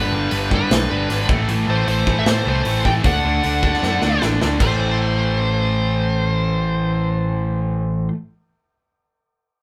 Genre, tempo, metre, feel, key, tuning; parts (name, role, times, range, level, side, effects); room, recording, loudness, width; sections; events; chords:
hard rock; 154 BPM; 4/4; straight; A dorian; A4 = 440 Hz
high-gain lead guitar; melody; 0.0-8.1 s; B4 to G5; -25 LUFS; equal; distortion
cranked stack guitar; riff; 0.0-8.1 s; G2 to D4; -24 LUFS; equal; overdrive
picked electric bass; bass; 0.0-8.1 s; G1 to A2; -25 LUFS; equal
big rock drum kit; drums; 0.3-4.7 s; crash cymbal, hi-hat, kick drum, snare drum; -24 LUFS; equal
moderate studio ambience, RT60 0.4 s; band playing live in one room; -19 LUFS; mono
0.0-4.6 A section; 4.6-7.7 B section
drum fill 3.8-4.6
0.0 G; 1.3 Am; 3.0 D; 4.6 Am